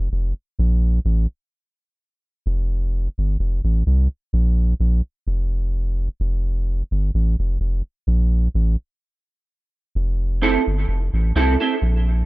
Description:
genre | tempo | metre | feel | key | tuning
dub reggae | 64 BPM | 4/4 | straight | F major | A4 = 440 Hz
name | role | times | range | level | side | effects
soft dub sub bass | bass | 0.0-12.2 s | F1 to C2 | -18 LUFS | equal | none
semi-hollow electric guitar | accompaniment | 10.4-11.7 s | C4 to A4 | -21 LUFS | right 4 dB | ensemble chorus, dub echo
room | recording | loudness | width
little or no reverb | none | -18 LUFS | side -19 dB against mid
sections
0.0-12.3 A section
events
break 0.0-9.9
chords
0.0 N.C.; 4.3 Bb5; 6.2 N.C.; 9.9 Fmaj7

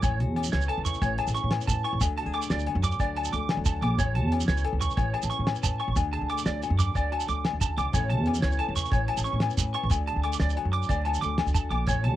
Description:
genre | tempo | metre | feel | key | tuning
highlife guitar band | 122 BPM (dotted quarters) | 12/8 | straight | A major | A4 = 440 Hz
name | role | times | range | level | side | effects
nylon-string guitar | accompaniment | 0.0-12.2 s | A2 to B4 | -37 LUFS | left 7 dB | cassette tape
clean electric guitar | arpeggios | 0.0-12.2 s | C#5 to D6 | -32 LUFS | right 7 dB | ensemble chorus, cassette tape, tape echo
upright bass | bass | 0.0-12.2 s | A1 to A2 | -28 LUFS | equal | none
cloth-damped thuddy drum kit | drums | 0.0-12.1 s | hi-hat, kick drum, snare drum | -29 LUFS | equal | cassette tape
agogo bells | percussion | 0.0-12.0 s | none | -33 LUFS | left 10 dB | none
shekere | percussion | 0.0-12.0 s | none | -32 LUFS | right 3 dB | none
room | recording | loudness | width
little or no reverb | home recording on cassette | -24 LUFS | side -13 dB against mid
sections
0.0-12.2 A section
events
none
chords
0.0 A; 2.0 D; 4.0 A; 6.0 D; 7.9 A; 9.9 D

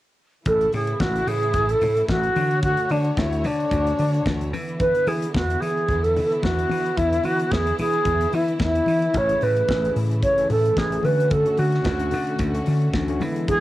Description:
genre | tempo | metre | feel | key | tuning
disco | 111 BPM | 4/4 | swing 56% on 16ths | A major | A4 = 440 Hz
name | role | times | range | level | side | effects
alto flute | melody | 0.5-13.6 s | D4 to C#5 | -21 LUFS | equal | cassette tape
clear studio string section | sustained chords | 0.5-13.6 s | C#3 to C#5 | -33 LUFS | equal | none
vintage slap bass | bass | 0.5-13.6 s | A1 to E3 | -25 LUFS | equal | none
modern studio drum kit | drums | 0.5-13.6 s | hi-hat, kick drum, snare drum | -28 LUFS | equal | cassette tape
congas | percussion | 0.5-13.6 s | none | -33 LUFS | left 5 dB | none
tine electric piano | accompaniment | 9.3-13.6 s | D3 to A4 | -28 LUFS | left 3 dB | medium stereo tremolo
room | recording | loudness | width
light reverb | home recording on cassette | -19 LUFS | side -15 dB against mid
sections
0.5-13.6 A section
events
none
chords
0.5 A; 2.4 Dmaj7; 4.5 E7; 9.1 Amaj7; 11.0 Dmaj7

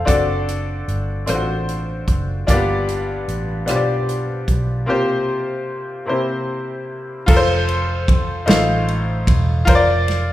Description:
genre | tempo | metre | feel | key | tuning
slow gospel | 50 BPM (dotted quarters) | 6/8 | straight | F major | A4 = 440 Hz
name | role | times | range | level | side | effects
clear grand piano | accompaniment | 0.0-10.3 s | G2 to F5 | -20 LUFS | left 2 dB | none
vintage muted fingered electric bass | bass | 0.0-10.3 s | E1 to B1 | -22 LUFS | right 1 dB | none
natural country drum kit | drums | 0.1-10.3 s | crash cymbal, hi-hat, kick drum, ride cymbal, rim click, snare drum | -19 LUFS | right 1 dB | none
room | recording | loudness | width
moderate recital hall reverb, RT60 1.5 s | recorded in a church or concert hall | -16 LUFS | side -14 dB against mid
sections
0.0-7.3 A section; 7.3-10.3 B section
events
break 4.9-7.3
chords
0.1 D7/F#; 2.5 G7; 4.9 C7sus4; 6.1 C7; 7.3 F; 8.5 F7/A; 9.7 Bb/F

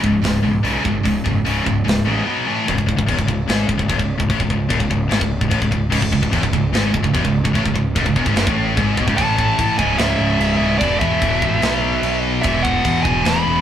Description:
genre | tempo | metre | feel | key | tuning
heavy metal | 147 BPM | 4/4 | straight | C# minor | A4 = 440 Hz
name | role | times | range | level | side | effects
high-gain distorted guitar | riff | 0.0-2.7, 5.9-13.6 s | C#2 to B3 | -22 LUFS | right 5 dB | distortion
scooped high-gain guitar | riff | 0.0-13.6 s | C#2 to B3 | -19 LUFS | left 3 dB | distortion
fuzz picked electric bass | bass | 0.0-13.6 s | C#1 to A2 | -23 LUFS | equal | overdrive
tight metal drum kit | drums | 0.0-13.4 s | china cymbal, crash cymbal, hi-hat, kick drum, snare drum | -22 LUFS | equal | none
dark smooth lead guitar | melody | 9.2-13.6 s | D5 to B5 | -20 LUFS | right 3 dB | overdrive
room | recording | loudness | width
moderate stone room reverb, RT60 1.2 s | band playing live in one room | -15 LUFS | side -10 dB against mid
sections
0.0-2.7 A section; 2.7-9.2 B section; 9.2-13.6 C section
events
break 2.3-2.7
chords
0.0 C#5; 2.3 B5; 2.5 A5; 2.7 C#m; 9.2 A5; 9.8 C#m; 10.8 E5; 11.6 B5; 12.4 E5

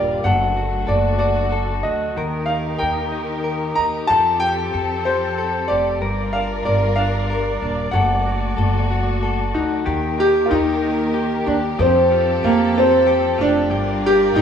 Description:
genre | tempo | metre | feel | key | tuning
six-eight pop ballad | 62 BPM (dotted quarters) | 6/8 | straight | unclear | A4 = 440 Hz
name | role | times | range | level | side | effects
clear concert grand piano | melody | 0.0-14.4 s | Bb3 to Bb5 | -19 LUFS | equal | none
direct-recorded clean electric guitar | accompaniment | 0.0-14.4 s | G2 to Bb4 | -25 LUFS | left 4 dB | wide subtle chorus
muted studio string section | sustained chords | 0.0-14.4 s | D3 to D5 | -26 LUFS | equal | none
upright bass | bass | 0.0-14.4 s | Eb1 to F2 | -24 LUFS | equal | none
room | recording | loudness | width
moderate lush hall reverb, RT60 2.5 s | rough home demo mix, studio ambience | -16 LUFS | side -8 dB against mid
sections
0.0-9.9 A section; 9.9-14.4 A section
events
none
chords
0.3 D/F#; 2.2 Eb; 4.1 Fadd9; 6.0 Gm7; 7.9 D/F#; 9.9 Eb; 11.8 Fadd9; 13.7 Gm7

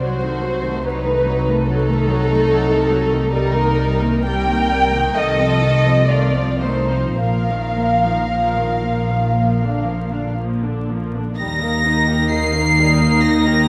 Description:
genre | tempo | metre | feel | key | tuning
classical, slow romantic movement for string orchestra | 52-74 BPM | 4/4 | rubato | Eb major from 3.3 s | A4 = 439 Hz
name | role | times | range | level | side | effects
warm symphonic violin section | melody | 0.0-13.7 s | Eb4 to C7 | -26 LUFS | equal | none
dark studio violin section | second line | 0.0-13.7 s | G3 to G5 | -23 LUFS | equal | none
warm symphonic viola section | accompaniment | 0.0-13.7 s | D3 to Eb4 | -25 LUFS | equal | none
dark symphonic double bass section | bass | 0.0-13.7 s | Bb1 to Eb2 | -25 LUFS | equal | none
warm symphonic cello section | bass | 0.0-13.7 s | Bb2 to Eb3 | -25 LUFS | equal | none
room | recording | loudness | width
moderate scoring stage reverb, RT60 1.8 s | vinyl crackle | -18 LUFS | mono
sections
0.0-11.4 A section; 11.4-13.7 B section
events
none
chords
0.0 Cdim7; 3.3 Cm7; 5.2 F7/C; 7.2 Bbsus4; 9.4 Bb; 11.4 Eb

